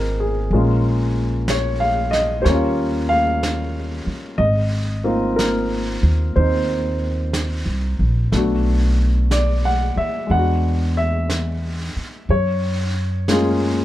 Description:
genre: jazz ballad.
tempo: 61 BPM.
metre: 4/4.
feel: swing 66% on 8ths.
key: unclear.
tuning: A4 = 439 Hz.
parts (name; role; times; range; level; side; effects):
warm baby grand piano; accompaniment; 0.0-13.8 s; G3 to F#5; -20 LUFS; left 1 dB; none.
upright bass; bass; 0.0-13.8 s; Ab1 to Gb2; -20 LUFS; equal; none.
vintage brush drum kit; drums; 0.5-13.8 s; brushed snare drum, hi-hat, snare drum; -29 LUFS; right 2 dB; none.
room: little or no reverb.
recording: dark, warm production.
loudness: -17 LUFS.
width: side -14 dB against mid.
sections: 0.0-13.8 A section.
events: none.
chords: 0.0 Fm11; 0.5 Bbm7; 2.5 Eb9; 4.4 Ab6; 8.3 Bm7; 10.3 E9; 12.3 Gbmaj9.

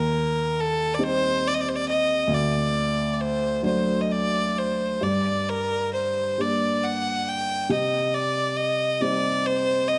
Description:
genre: celtic folk, Celtic slow air.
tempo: 43-47 BPM (dotted quarters).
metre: 6/8.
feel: rubato.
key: unclear.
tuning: A4 = 440 Hz.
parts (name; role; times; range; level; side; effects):
clear fiddle; melody; 0.0-10.0 s; A4 to G5; -26 LUFS; equal; none.
dark upright piano; accompaniment; 0.0-10.0 s; D2 to Eb4; -28 LUFS; equal; none.
room: moderate scoring stage reverb, RT60 1.6 s.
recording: nothing above 10.6 kHz.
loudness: -24 LUFS.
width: mono.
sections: 0.0-10.0 A section.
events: none.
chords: 0.0 Cm/Eb; 2.3 D; 5.0 Gm; 7.7 Cm.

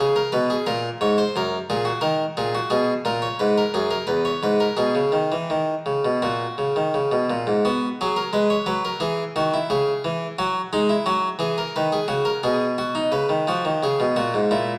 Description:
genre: classical, baroque-style two-part invention for harpsichord.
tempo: 87 BPM.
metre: 4/4.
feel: straight.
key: B major.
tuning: A4 = 441 Hz.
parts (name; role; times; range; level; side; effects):
harpsichord; solo; 0.0-14.7 s; E2 to Db5; -22 LUFS; equal; none.
room: wet recital hall reverb, RT60 1.3 s.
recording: vinyl crackle.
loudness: -22 LUFS.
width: mono.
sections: 0.0-7.7 A section; 7.7-13.1 B section; 13.1-14.8 A section.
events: none.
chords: 0.0 Db7(no3); 0.7 Gb; 2.0 D#5; 3.4 E; 4.8 B; 6.2 F#/A#; 7.7 B5; 9.0 C#m; 10.4 F#; 11.7 B; 13.1 C#7.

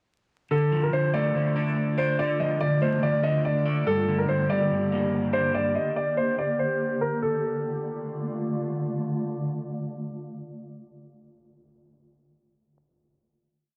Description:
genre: hip hop, drill.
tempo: 143 BPM.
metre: 4/4.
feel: half-time.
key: D minor.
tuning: A4 = 442 Hz.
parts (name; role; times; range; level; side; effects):
warm concert grand piano; melody; 0.5-8.4 s; A4 to Eb5; -28 LUFS; equal; low-pass filter, tape echo.
electric guitar at the edge of break-up; accompaniment; 0.5-6.4 s; G2 to D5; -28 LUFS; equal; lush chorus, low-pass filter.
granular cloud pad; sustained chords; 1.9-11.1 s; D3 to D5; -34 LUFS; equal; built-in reverb.
room: light reverb.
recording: echo-heavy mix, vinyl crackle, low-pass filter.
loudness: -26 LUFS.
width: mono.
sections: 0.5-7.2 breakdown; 7.2-10.6 final chord.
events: filter sweep 0.5-7.2.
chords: 0.5 Dm; 3.9 Gm; 7.2 Dm.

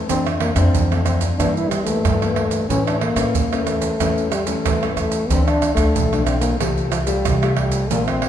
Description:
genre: samba and choro.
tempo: 92 BPM.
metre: 4/4.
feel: straight.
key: D minor.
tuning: A4 = 440 Hz.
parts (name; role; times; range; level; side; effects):
nylon-string guitar; accompaniment; 0.0-8.3 s; F2 to G4; -24 LUFS; left 5 dB; none.
mellow trombone; melody; 0.1-8.3 s; F3 to E4; -22 LUFS; equal; none.
upright bass; bass; 0.1-8.3 s; Bb1 to A2; -22 LUFS; equal; none.
maracas, surdo, pandeiro and tamborim; percussion; 0.1-8.3 s; none; -22 LUFS; right 4 dB; none.
room: wet recital hall reverb, RT60 1.8 s.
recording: recorded in a church or concert hall.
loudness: -17 LUFS.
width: side -10 dB against mid.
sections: 0.0-8.3 A section.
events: none.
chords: 0.1 Dm/F; 1.4 Edim/G; 2.7 A; 5.3 Dm; 6.6 Fadd9/C.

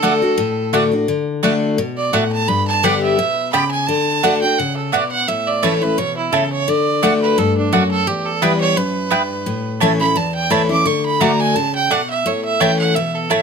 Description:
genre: bluegrass.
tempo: 172 BPM.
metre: 4/4.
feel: swing 55% on 8ths.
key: D major.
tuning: A4 = 442 Hz.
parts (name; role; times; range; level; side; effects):
clear fiddle; melody; 0.0-13.4 s; D4 to D6; -19 LUFS; right 5 dB; none.
picked steel-string acoustic guitar; accompaniment; 0.0-13.4 s; E2 to G4; -18 LUFS; left 4 dB; none.
mandolin; stabs; 0.0-13.4 s; A3 to A5; -19 LUFS; right 4 dB; none.
room: moderate studio reverb, RT60 0.9 s.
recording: close, detailed microphones.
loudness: -15 LUFS.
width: side -6 dB against mid.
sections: 0.0-1.1 A section; 1.1-13.4 B section.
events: fiddle solo 1.1-13.4.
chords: 0.0 D; 2.5 G; 3.9 D; 5.3 A; 6.7 D; 8.1 Em; 9.5 A; 10.9 D; 12.3 A.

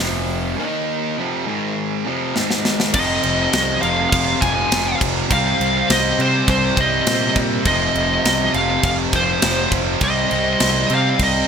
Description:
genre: hard rock.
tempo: 102 BPM.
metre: 4/4.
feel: straight.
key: F minor.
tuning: A4 = 440 Hz.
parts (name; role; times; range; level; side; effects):
sludgy distorted guitar; riff; 0.0-11.5 s; F2 to Eb4; -25 LUFS; left 10 dB; overdrive.
tight distorted guitar; riff; 0.0-11.5 s; F2 to Eb4; -24 LUFS; right 12 dB; distortion.
fuzz picked electric bass; bass; 0.0-11.4 s; F1 to C3; -24 LUFS; equal; overdrive.
tight metal drum kit; drums; 2.4-11.3 s; crash cymbal, kick drum, snare drum; -21 LUFS; equal; none.
high-gain lead guitar; melody; 2.9-11.5 s; C5 to Ab5; -19 LUFS; equal; distortion.
tight distorted guitar; riff; 2.9-11.5 s; F2 to C4; -25 LUFS; left 1 dB; distortion.
room: moderate plate reverb, RT60 1.9 s, studio reverb.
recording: bright 1980s-style digital production.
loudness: -16 LUFS.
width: side -7 dB against mid.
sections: 0.0-2.9 A section; 2.9-11.5 B section.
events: drum fill 2.4-2.9.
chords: 0.0 F5; 0.6 Eb5; 1.2 F5; 1.5 Ab5; 2.1 F5; 2.4 Ab5; 2.9 Fm; 5.3 Cm; 7.7 F5; 10.0 Cm.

